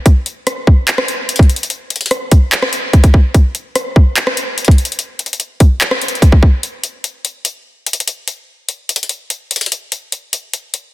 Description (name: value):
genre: hip hop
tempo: 146 BPM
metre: 4/4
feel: half-time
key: none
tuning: none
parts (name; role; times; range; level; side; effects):
- trap drum kit; drums; 0.1-10.8 s; handclaps, hi-hat, kick drum, rim click; -10 LUFS; equal; none
room: light reverb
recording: dense, heavily limited modern master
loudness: -12 LUFS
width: side -17 dB against mid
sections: 0.0-6.6 A section; 6.6-10.9 B section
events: none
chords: none